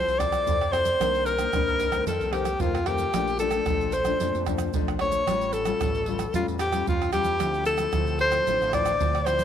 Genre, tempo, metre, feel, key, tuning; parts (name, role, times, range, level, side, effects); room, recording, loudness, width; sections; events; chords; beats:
samba and choro; 112 BPM; 4/4; straight; F major; A4 = 440 Hz
breathy alto saxophone; melody; 0.0-9.4 s; F4 to D5; -24 LUFS; left 1 dB
nylon-string guitar; accompaniment; 0.0-9.4 s; F2 to A4; -31 LUFS; left 10 dB
growling fingered electric bass; bass; 0.0-9.4 s; A1 to F2; -32 LUFS; right 1 dB; overdrive
tube shaker, pandeiro, surdo and tamborim; percussion; 0.1-9.4 s; -30 LUFS; right 6 dB
moderate plate reverb, RT60 3.5 s; 1960s-style stereo with parts hard left and right; -22 LUFS; side -9 dB against mid
0.0-9.4 A section
0.0 Fmaj7; 1.0 Cm9; 2.1 F7; 3.1 Bbmaj7; 5.3 A7b13; 7.4 Dm9
0.47 | 1.00 1.53 2.07 2.60 | 3.14 3.67 4.20 4.74 | 5.27 5.80 6.33 6.87 | 7.40 7.93 8.47 9.00